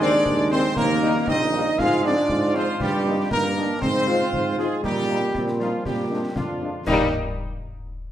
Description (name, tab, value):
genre	military-style march for wind band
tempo	118 BPM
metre	2/4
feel	straight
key	Eb major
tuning	A4 = 443 Hz
part	mellow trumpet section	melody	0.0-7.1 s	F4 to F5	-25 LUFS	left 1 dB	none
part	mellow euphonium	second line	0.0-7.1 s	F3 to F4	-26 LUFS	right 2 dB	none
part	mellow French horn section	accompaniment	0.0-7.1 s	Eb3 to F4	-29 LUFS	left 4 dB	none
part	warm trombone section	sustained chords	0.0-7.1 s	G3 to F4	-30 LUFS	right 2 dB	none
part	warm tuba	bass	0.0-7.1 s	Bb1 to Bb2	-25 LUFS	right 1 dB	none
part	concert snare drum, concert bass drum and clash cymbals	drums	0.0-7.1 s	none	-31 LUFS	left 2 dB	none
room	wet recital hall reverb, RT60 1.4 s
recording	none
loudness	-20 LUFS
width	side -11 dB against mid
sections	0.0-6.9 A section; 6.9-7.9 B section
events	none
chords	0.0 Ab/Eb; 0.8 Eb; 1.8 Fm/Ab; 2.8 Eb/G; 3.8 Fm/Ab; 4.8 Eb/Bb; 5.8 Bb7; 6.9 Eb